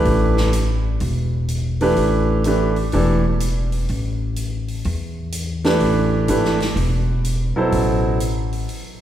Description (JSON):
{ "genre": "modal jazz", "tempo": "125 BPM", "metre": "4/4", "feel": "swing 66% on 8ths", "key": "A dorian", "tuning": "A4 = 440 Hz", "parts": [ { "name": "clear concert grand piano", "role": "accompaniment", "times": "0.0-8.2 s", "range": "B2 to C5", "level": "-19 LUFS", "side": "right 1 dB", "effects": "none" }, { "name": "upright bass", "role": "bass", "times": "0.1-8.6 s", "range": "E1 to E2", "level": "-21 LUFS", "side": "equal", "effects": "none" }, { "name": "swinging big-band drum kit", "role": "drums", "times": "0.1-8.8 s", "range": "hi-hat, snare drum", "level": "-32 LUFS", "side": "equal", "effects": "none" } ], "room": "wet church reverb, RT60 2.8 s", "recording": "recorded in a church or concert hall", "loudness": "-17 LUFS", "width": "side -11 dB against mid", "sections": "0.0-9.0 A section", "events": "break 8.7-9.0", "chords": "0.0 A7sus2" }